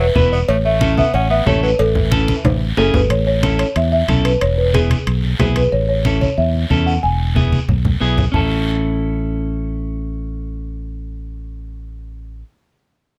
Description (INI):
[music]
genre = latin, cumbia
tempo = 183 BPM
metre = 4/4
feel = straight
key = A major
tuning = A4 = 440 Hz
[part]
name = folk marimba with soft mallets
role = melody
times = 0.0-12.4 s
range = G#4 to A5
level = -21 LUFS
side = equal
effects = none
[part]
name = raspy tenor saxophone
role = second line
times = 0.0-2.7 s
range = E3 to C#4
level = -28 LUFS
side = equal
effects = none
[part]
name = fingered electric bass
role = bass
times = 0.0-12.4 s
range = E1 to E2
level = -21 LUFS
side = equal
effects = none
[part]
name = clean electric guitar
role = accompaniment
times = 0.2-12.4 s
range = B3 to B4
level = -24 LUFS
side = equal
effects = none
[part]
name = congas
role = percussion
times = 0.2-8.4 s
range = none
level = -22 LUFS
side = equal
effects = none
[part]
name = guiro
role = percussion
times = 0.2-8.4 s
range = none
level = -33 LUFS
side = equal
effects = none
[part]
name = cowbell and timbales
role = percussion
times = 0.5-5.7 s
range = none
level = -26 LUFS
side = equal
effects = none
[sound]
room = little or no reverb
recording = close, detailed microphones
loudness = -17 LUFS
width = mono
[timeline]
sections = 0.0-3.1 A section; 3.1-8.3 B section; 8.3-11.0 C section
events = drum fill 2.3-3.1, 7.4-8.3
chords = 0.5 A; 4.4 E; 5.7 A; 7.0 E; 8.3 A